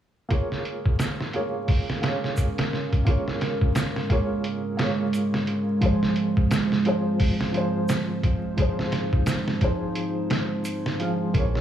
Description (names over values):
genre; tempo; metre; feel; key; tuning
trip hop; 87 BPM; 4/4; swing 59% on 16ths; Bb minor; A4 = 439 Hz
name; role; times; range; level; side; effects
felt-muted upright piano; accompaniment; 0.3-11.6 s; F3 to F5; -28 LUFS; equal; tremolo, low-pass filter, tape echo
dark analog pad; sustained chords; 0.3-11.6 s; Ab3 to Db5; -28 LUFS; right 2 dB; chorus
trip hop sampler-style drum kit; drums; 0.3-11.6 s; hi-hat, kick drum, snare drum; -24 LUFS; equal; low-pass filter on hats, studio ambience, low-pass filter on kick, low-pass filter on snare
egg shaker; percussion; 1.0-10.8 s; none; -46 LUFS; equal; none
deep dub fingered electric bass; bass; 11.3-11.6 s; Bb1; -24 LUFS; equal; none
room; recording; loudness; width
light reverb; vinyl crackle, studio ambience; -22 LUFS; side -10 dB against mid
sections
0.3-11.6 A section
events
none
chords
0.3 Bbm7; 5.8 Fm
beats
| 0.31 1.00 1.69 2.38 | 3.07 3.76 4.45 5.14 | 5.83 6.52 7.21 7.90 | 8.59 9.28 9.96 10.65 | 11.35